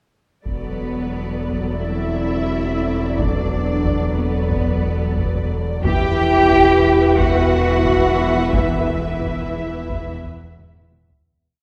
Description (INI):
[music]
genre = cinematic, suspense film score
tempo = 89 BPM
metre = 4/4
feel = straight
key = E minor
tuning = A4 = 441 Hz
[part]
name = mellow French horn section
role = sustained chords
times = 0.4-10.9 s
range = F#3 to E4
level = -27 LUFS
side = equal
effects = none
[part]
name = muted studio violin section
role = melody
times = 0.5-11.0 s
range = D5 to E5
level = -32 LUFS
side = equal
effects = none
[part]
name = muted studio violin section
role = second line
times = 0.5-10.9 s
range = B4 to G5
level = -30 LUFS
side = equal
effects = none
[part]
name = muted studio viola section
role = accompaniment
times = 0.5-11.0 s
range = E3 to B4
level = -29 LUFS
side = equal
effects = none
[part]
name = muted studio cello section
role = bass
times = 0.5-10.9 s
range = B3 to G4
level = -23 LUFS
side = equal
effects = none
[part]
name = muted studio double bass section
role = bass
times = 0.5-11.0 s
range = E2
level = -27 LUFS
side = equal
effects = none
[part]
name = saturated sub bass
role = drone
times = 0.5-11.2 s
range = E1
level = -30 LUFS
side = equal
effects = none
[part]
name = taiko ensemble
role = drums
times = 0.5-11.4 s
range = none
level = -28 LUFS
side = equal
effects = none
[sound]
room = wet concert hall reverb, RT60 2.3 s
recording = heard from further back in the room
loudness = -18 LUFS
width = mono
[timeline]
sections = 0.5-11.3 A section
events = fade-out 8.5-11.3; drum fill 10.6-11.3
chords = 0.5 D6/E; 5.8 Esus2